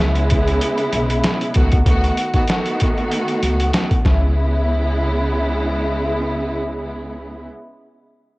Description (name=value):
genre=hip hop, boom-bap hip-hop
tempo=96 BPM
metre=4/4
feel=swing 54% on 16ths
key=C# minor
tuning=A4 = 442 Hz
part: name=warm studio string section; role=accompaniment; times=0.0-7.5 s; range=C#3 to F#4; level=-20 LUFS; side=equal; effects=cassette tape, high-pass filter, low-pass filter
part: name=upright bass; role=bass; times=0.0-7.5 s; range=B1 to C#2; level=-20 LUFS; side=equal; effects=none
part: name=boom bap sampler-style drum kit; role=drums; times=0.0-4.2 s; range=hi-hat, kick drum, snare drum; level=-19 LUFS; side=equal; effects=cassette tape
room=light reverb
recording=home recording on cassette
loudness=-16 LUFS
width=side -21 dB against mid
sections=0.0-4.4 A section; 4.4-6.9 B section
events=none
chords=0.0 C#m7; 1.5 B7/C#; 4.0 C#m7